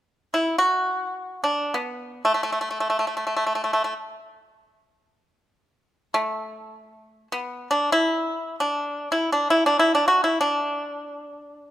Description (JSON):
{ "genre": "chinese traditional, Chinese solo plucked strings", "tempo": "free time", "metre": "none", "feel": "none", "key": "D gong mode", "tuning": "A4 = 438 Hz", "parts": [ { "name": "pipa", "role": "solo", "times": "0.3-11.7 s", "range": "A3 to F#4", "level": "-21 LUFS", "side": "equal", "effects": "none" } ], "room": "moderate recital hall reverb, RT60 1.7 s", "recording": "minimal, uncompressed stereo recording", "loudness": "-21 LUFS", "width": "side -13 dB against mid", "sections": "0.0-11.7 A section", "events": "none", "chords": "none" }